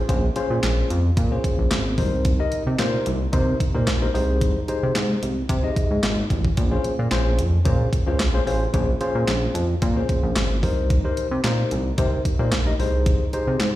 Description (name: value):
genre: early-eighties boogie funk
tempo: 111 BPM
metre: 4/4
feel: straight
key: Bb dorian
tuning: A4 = 438 Hz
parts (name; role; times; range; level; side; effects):
- chorused synth bass; bass; 0.0-13.8 s; Ab1 to C3; -22 LUFS; equal; none
- tine electric piano; accompaniment; 0.1-13.8 s; Db4 to Eb5; -26 LUFS; left 2 dB; slow stereo tremolo, slapback echo
- clean 12-bit digital drum machine; drums; 0.1-13.7 s; handclaps, hi-hat, kick drum, snare drum; -24 LUFS; equal; overdrive
room: little or no reverb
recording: live gig heard through the venue's PA, recital hall reverb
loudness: -19 LUFS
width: side -15 dB against mid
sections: 0.0-13.8 A section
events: none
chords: 0.0 Bbm9; 2.0 Cm7; 4.1 Abmaj7; 6.6 Bbm9; 10.6 Cm7; 12.8 Abmaj7